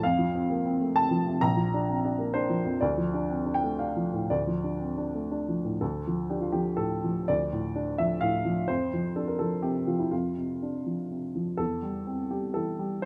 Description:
neoclassical minimalist piano; 117-132 BPM; 3/4; rubato; A4 = 440 Hz
warm upright piano; solo; 0.0-13.1 s; Bb1 to Bb5; -29 LUFS; equal
light reverb; -29 LUFS; mono
0.0-5.8 A section; 5.8-13.1 B section
0.0 F; 1.4 Bb; 2.8 Dm; 8.7 F5; 11.6 C/E

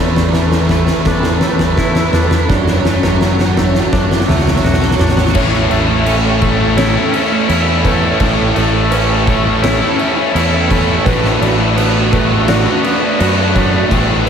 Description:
post-rock; 84 BPM; 4/4; straight; A major; A4 = 440 Hz
felt-muted upright piano; arpeggios; 0.0-14.3 s; D4 to E5; -24 LUFS; right 3 dB; tape echo
twangy electric guitar; arpeggios; 0.0-14.3 s; E2 to F#4; -19 LUFS; left 2 dB; spring reverb, tape echo
raw garage guitar; riff; 0.0-14.3 s; A3 to C#5; -19 LUFS; right 8 dB; overdrive, ensemble chorus
overdriven fingered electric bass; bass; 0.0-14.3 s; A1 to F#2; -17 LUFS; equal
oversized low-tuned drum kit; drums; 0.2-14.3 s; crash cymbal, kick drum, snare drum, toms; -16 LUFS; left 1 dB
distorted electric guitar; riff; 5.3-14.3 s; A3 to B4; -18 LUFS; left 8 dB; overdrive
moderate huge ambient reverb, RT60 8.2 s; dreamy mix soaked in reverb; -11 LUFS; side -7 dB against mid
0.0-5.3 A section; 5.3-14.3 B section
build-up 0.0-5.3; drum fill 0.0-5.3
0.0 E7sus4; 2.5 Dmaj7/F#; 5.3 A; 11.1 Bm/A

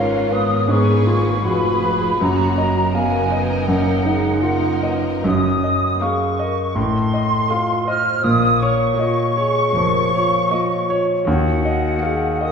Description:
classical, romantic movement for piano and orchestra; 80 BPM; 4/4; rubato; Eb minor, Bb minor from 5.2 s; A4 = 441 Hz
clear concert grand piano; melody; 0.0-12.5 s; Eb2 to F5; -19 LUFS; equal
rich chamber violin section; melody; 0.0-12.5 s; Gb4 to Eb5; -33 LUFS; left 3 dB
hollow flute section; second line; 0.0-12.5 s; F5 to F6; -21 LUFS; equal
rich studio viola section; accompaniment; 0.0-12.5 s; Ab3 to Ab4; -27 LUFS; equal
mellow French horn section; sustained chords; 0.0-12.5 s; F4 to C5; -26 LUFS; left 2 dB
bright studio cello section; bass; 0.0-11.9 s; Eb2 to Bb2; -26 LUFS; right 2 dB
rich chamber double bass section; bass; 0.0-11.9 s; F1 to Eb2; -29 LUFS; right 3 dB
wet scoring stage reverb, RT60 1.8 s; heard from further back in the room; -16 LUFS; side -6 dB against mid
0.0-12.5 A section
0.0 Fdim/Ab; 2.2 Ebm/Gb; 6.8 F7/A; 8.2 Bbm; 11.3 Ebm

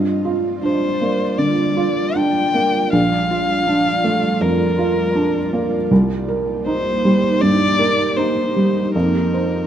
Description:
neoclassical piano and strings; 80 BPM; 4/4; rubato; G minor; A4 = 440 Hz
felt-muted upright piano; accompaniment; 0.0-9.7 s; Bb1 to C5; -18 LUFS; right 2 dB
ethereal airy pad; sustained chords; 0.0-9.7 s; G3 to D5; -23 LUFS; right 2 dB; ensemble chorus, built-in reverb
muted violin; melody; 0.6-9.7 s; Bb4 to G5; -20 LUFS; left 3 dB
moderate recital hall reverb, RT60 1.5 s; close, detailed microphones; -15 LUFS; side -10 dB against mid
0.0-9.7 A section
0.0 Gm7; 2.9 Bbmaj7; 5.9 Cm7; 8.9 F7(no3)

